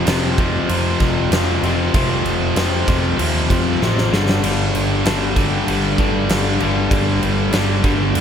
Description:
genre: hard rock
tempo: 96 BPM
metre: 4/4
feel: straight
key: unclear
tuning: A4 = 439 Hz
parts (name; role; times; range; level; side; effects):
- cranked stack guitar; riff; 0.0-8.2 s; F2 to G3; -21 LUFS; left 10 dB; overdrive
- high-gain distorted guitar; riff; 0.0-8.2 s; F2 to G3; -24 LUFS; right 1 dB; distortion
- scooped high-gain guitar; riff; 0.0-8.2 s; F2 to G3; -23 LUFS; right 10 dB; distortion
- overdriven picked electric bass; bass; 0.1-8.2 s; F1 to F2; -22 LUFS; right 1 dB; none
- huge arena drum kit; drums; 0.1-8.2 s; crash cymbal, kick drum, snare drum; -21 LUFS; right 1 dB; none
room: light reverb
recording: none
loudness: -15 LUFS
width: side -8 dB against mid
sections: 0.0-8.2 A section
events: drum fill 3.8-4.4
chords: 0.0 F5; 4.1 G5

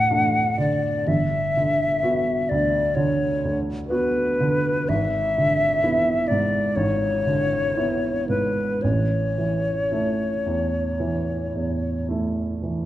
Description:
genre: classical, romantic duo for flute and grand piano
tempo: 55-66 BPM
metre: 4/4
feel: rubato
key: unclear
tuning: A4 = 440 Hz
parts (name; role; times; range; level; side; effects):
- hollow silver concert flute; melody; 0.0-12.1 s; B4 to F#5; -23 LUFS; left 2 dB; none
- warm grand piano; accompaniment; 0.0-12.9 s; G1 to F#4; -23 LUFS; right 2 dB; none
room: wet recital hall reverb, RT60 1.5 s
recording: dark, warm production, nothing above 10.8 kHz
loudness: -20 LUFS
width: side -14 dB against mid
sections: 0.0-12.9 A section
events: none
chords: 0.0 D; 1.1 Gmaj7; 4.9 E7/G#; 8.8 A

